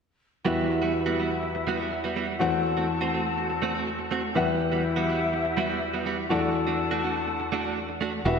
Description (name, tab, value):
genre	pop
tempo	123 BPM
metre	4/4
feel	straight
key	E minor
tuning	A4 = 438 Hz
part	warm grand piano	accompaniment	0.4-8.4 s	E2 to F#5	-27 LUFS	left 2 dB	wide subtle chorus
part	flute section	sustained chords	0.5-8.2 s	C4 to A5	-30 LUFS	left 2 dB	none
part	direct-recorded clean electric guitar	riff	0.5-8.4 s	G3 to F#4	-30 LUFS	right 6 dB	lush chorus, digital delay
part	fingered electric bass	bass	8.3-8.4 s	E1	-24 LUFS	right 1 dB	none
room	wet lush hall reverb, RT60 1.7 s, small room ambience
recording	bright 1980s-style digital production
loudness	-24 LUFS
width	side -6 dB against mid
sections	0.5-8.3 A section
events	none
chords	0.5 Emadd9; 2.4 F#dim/E; 4.4 Emadd9; 6.3 D/E